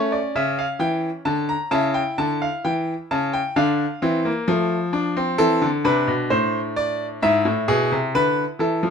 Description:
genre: classical, baroque-style 3-part fugue for grand piano.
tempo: 65 BPM.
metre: 4/4.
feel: straight.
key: unclear.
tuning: A4 = 441 Hz.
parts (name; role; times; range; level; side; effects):
bright concert grand piano; solo; 0.0-8.9 s; G#2 to Bb5; -19 LUFS; left 1 dB; none.
room: little or no reverb.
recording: close, detailed microphones.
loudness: -19 LUFS.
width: side -6 dB against mid.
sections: 0.0-8.9 A section.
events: none.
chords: 0.0 A; 1.7 A7/C#; 3.6 Dm; 5.4 Am; 7.2 E/G#.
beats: 0.81 | 1.72 2.64 3.55 4.47 | 5.39 6.31 7.22 8.14.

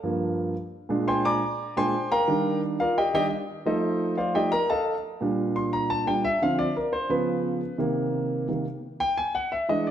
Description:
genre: jazz.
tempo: 174 BPM.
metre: 4/4.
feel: straight.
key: Bb major.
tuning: A4 = 444 Hz.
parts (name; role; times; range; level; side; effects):
warm concert grand piano; solo; 0.0-9.9 s; G2 to D6; -23 LUFS; equal; none.
room: wet recital hall reverb, RT60 1.5 s.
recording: none.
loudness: -23 LUFS.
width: side -10 dB against mid.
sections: 0.0-5.0 A section; 5.0-9.9 A section.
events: grand piano solo 0.0-5.0, 5.0-9.9.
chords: 0.0 Gm7; 0.9 Bb13; 2.3 Ebmaj9; 3.7 F13; 5.0 Bb6; 6.4 Dm7; 7.1 Db7; 7.8 Cm7; 9.2 E7.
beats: 0.21 0.56 | 0.90 1.25 1.59 1.94 | 2.29 2.63 2.98 3.32 | 3.67 4.01 4.36 4.70 | 5.04 5.39 5.73 6.08 | 6.42 6.76 7.11 7.45 | 7.80 8.14 8.48 8.83 | 9.17 9.52 9.86.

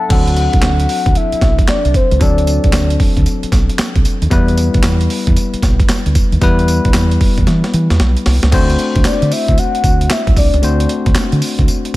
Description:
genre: R&B, new jack swing.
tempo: 114 BPM.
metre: 4/4.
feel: swing 64% on 16ths.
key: unclear.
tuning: A4 = 437 Hz.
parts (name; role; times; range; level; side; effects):
soft octave-layered synth lead; melody; 0.0-3.0, 9.1-10.9 s; C5 to A5; -19 LUFS; left 2 dB; chorus.
bell-like tine electric piano; accompaniment; 0.0-12.0 s; F#3 to B5; -19 LUFS; left 3 dB; none.
deep dub fingered electric bass; bass; 0.1-12.0 s; B1 to E3; -14 LUFS; equal; none.
breakbeat sampler-style drum kit; drums; 0.1-12.0 s; crash cymbal, handclaps, hi-hat, kick drum, snare drum, tambourine; -14 LUFS; equal; none.
room: digital ambience.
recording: none.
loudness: -11 LUFS.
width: side -17 dB against mid.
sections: 0.1-8.5 A section; 8.5-12.0 B section.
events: drum fill 7.5-8.5.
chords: 0.1 D7; 4.3 Em; 8.5 D7.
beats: | 0.10 0.63 1.16 1.68 | 2.21 2.73 3.26 3.79 | 4.31 4.84 5.37 5.89 | 6.42 6.95 7.47 8.00 | 8.52 9.05 9.58 10.10 | 10.63 11.15 11.68.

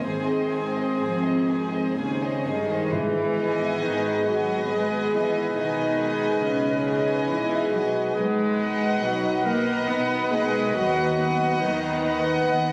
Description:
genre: classical, slow romantic movement for symphony orchestra.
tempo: 62-72 BPM.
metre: 3/4.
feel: rubato.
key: G# minor.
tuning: A4 = 445 Hz.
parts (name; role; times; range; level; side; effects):
warm symphonic violin section; melody; 0.0-12.7 s; Eb5 to Ab5; -34 LUFS; equal; none.
dark clarinet; second line; 0.0-12.5 s; C#4 to B4; -33 LUFS; equal; none.
warm studio violin section; second line; 0.0-12.7 s; Ab4 to D#5; -34 LUFS; equal; none.
dark symphonic viola section; accompaniment; 0.0-12.7 s; B3 to C4; -36 LUFS; equal; none.
dark French horn section; sustained chords; 0.0-12.7 s; Eb3 to D#4; -35 LUFS; equal; none.
concert harp; arpeggios; 0.0-12.7 s; Ab2 to B5; -32 LUFS; equal; none.
dark studio double bass section; bass; 0.0-12.7 s; Ab1 to D#2; -37 LUFS; equal; none.
rich symphonic cello section; bass; 0.0-12.5 s; Eb2 to B3; -31 LUFS; equal; none.
mellow hollow flute section; second line; 2.0-12.5 s; C#5 to B5; -36 LUFS; equal; none.
warm oboe; second line; 2.9-12.7 s; B4; -36 LUFS; equal; none.
mellow bassoon; accompaniment; 2.9-12.7 s; D#3 to G#3; -36 LUFS; equal; none.
timpani; percussion; 2.9-4.2 s; G#2; -38 LUFS; equal; none.
room: moderate scoring stage reverb, RT60 1.5 s.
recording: recorded on a phone in the room, studio reverb.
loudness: -24 LUFS.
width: mono.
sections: 0.0-2.9 A section; 2.9-12.7 B section.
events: none.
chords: 0.0 Ab; 2.9 G#m; 5.6 G#m/B; 8.1 B; 10.8 B/D#.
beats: | 0.03 1.00 1.97 | 2.92 3.83 4.71 | 5.56 6.42 7.29 | 8.15 9.02 9.88 | 10.76 11.61 12.47.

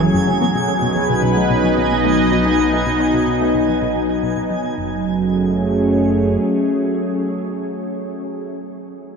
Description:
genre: ambient, sequencer-driven space music.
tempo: 110 BPM.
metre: 4/4.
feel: straight.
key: F# dorian.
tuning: A4 = 439 Hz.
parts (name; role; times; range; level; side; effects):
phased analog pad; sustained chords; 0.0-8.6 s; F#3 to D#5; -17 LUFS; equal; phaser, chorus.
concert harp; arpeggios; 0.0-8.5 s; D#3 to F#4; -28 LUFS; left 2 dB; none.
tight sequenced synth; riff; 0.0-5.0 s; F#2 to D#4; -24 LUFS; left 1 dB; chorus, phaser, analog delay.
fat analog bass; bass; 0.0-6.4 s; F#1 to B1; -28 LUFS; equal; none.
twinkling granular texture; texture; 0.0-4.8 s; G#5; -26 LUFS; right 2 dB; built-in reverb.
room: wet huge ambient reverb, RT60 7.8 s.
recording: dark, warm production.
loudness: -15 LUFS.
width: side -5 dB against mid.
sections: 0.0-4.8 A section; 4.8-9.1 B section.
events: fade-out on synth arpeggio sound 0.0-4.8; fade-out on analog synth bass 0.0-4.8.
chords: 0.4 B; 4.8 F#madd9.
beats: | 0.41 0.96 1.50 2.05 | 2.59 3.14 3.68 4.23 | 4.77 5.32 5.87 6.41 | 6.96 7.50 8.05.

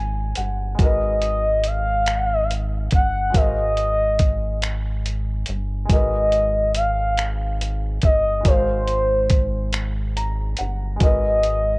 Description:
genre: slow six-eight R&B.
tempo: 47 BPM (dotted quarters).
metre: 6/8.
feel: straight.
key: unclear.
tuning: A4 = 440 Hz.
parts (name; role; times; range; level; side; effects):
warm baby grand piano; accompaniment; 0.0-11.8 s; G#3 to A#5; -31 LUFS; equal; cassette tape.
rubbery square bass; bass; 0.0-11.8 s; G1 to G#1; -24 LUFS; equal; none.
dusty soul sampler-style drum kit; drums; 0.4-11.6 s; finger snaps, hi-hat, kick drum; -20 LUFS; equal; cassette tape.
gliding portamento lead; melody; 0.8-11.8 s; B#4 to F#5; -20 LUFS; equal; chorus, cassette tape.
room: digital ambience.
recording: home recording on cassette.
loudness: -18 LUFS.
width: side -25 dB against mid.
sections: 0.0-11.8 A section.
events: grand piano fill 0.0-0.8, 9.7-11.0.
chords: 0.0 G#13; 0.8 G#m9; 3.3 G#13; 5.9 G#m9; 8.5 G#13; 11.0 G#m9.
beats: | 0.79 2.07 | 3.34 4.62 | 5.90 7.17 | 8.45 9.73 | 11.00.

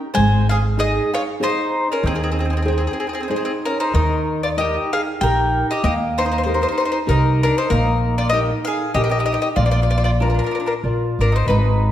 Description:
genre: italian folk, Italian serenade.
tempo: 96 BPM.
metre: 3/4.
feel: swing 55% on 8ths.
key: Ab major, Eb major from 3.9 s.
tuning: A4 = 441 Hz.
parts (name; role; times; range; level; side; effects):
nylon-string guitar; accompaniment; 0.0-11.9 s; Eb3 to G5; -24 LUFS; equal; none.
bowl-back mandolin; melody; 0.1-11.9 s; Ab4 to Ab5; -22 LUFS; left 3 dB; none.
mandolin; second line; 0.1-11.9 s; C4 to C5; -25 LUFS; right 2 dB; none.
upright bass; bass; 0.2-11.9 s; Ab1 to Eb2; -19 LUFS; equal; none.
room: wet recital hall reverb, RT60 1.6 s.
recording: none.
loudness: -16 LUFS.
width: side -11 dB against mid.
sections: 0.0-3.9 A section; 3.9-11.9 B section.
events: none.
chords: 0.1 Ab; 3.9 Eb; 7.7 Eb/Bb; 9.6 Bb.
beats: | 0.15 0.77 1.40 | 2.03 2.66 3.30 | 3.94 4.58 5.21 | 5.83 6.45 7.07 | 7.69 8.31 8.94 | 9.56 10.19 10.82 | 11.46.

